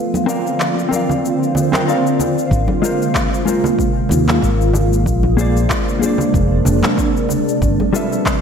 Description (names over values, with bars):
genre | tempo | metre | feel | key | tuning
sunset chillout | 94 BPM | 4/4 | swing 56% on 16ths | Ab lydian | A4 = 441 Hz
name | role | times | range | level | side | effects
shimmering ambient pad | sustained chords | 0.0-8.4 s | C3 to F4 | -18 LUFS | equal | chorus, built-in reverb, phaser
electronic cabasa and handclaps | drums | 0.1-8.4 s | none | -24 LUFS | left 1 dB | overdrive
congas | percussion | 0.1-7.9 s | none | -26 LUFS | equal | none
hollow-body jazz guitar | accompaniment | 0.3-8.4 s | G3 to G5 | -20 LUFS | left 1 dB | auto-pan, low-pass filter, tape echo
modern bright fingered electric bass | bass | 2.5-7.8 s | F1 to Eb2 | -16 LUFS | equal | none
electronic kick drum | drums | 2.5-8.4 s | none | -21 LUFS | equal | none
room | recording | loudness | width
wet lush hall reverb, RT60 1.9 s, digital ambience | dreamy mix soaked in reverb | -14 LUFS | side -7 dB against mid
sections
0.0-8.4 A section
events
break 0.0-2.5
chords
0.0 C9sus4; 2.5 Ab69; 5.1 Bb9; 7.6 G13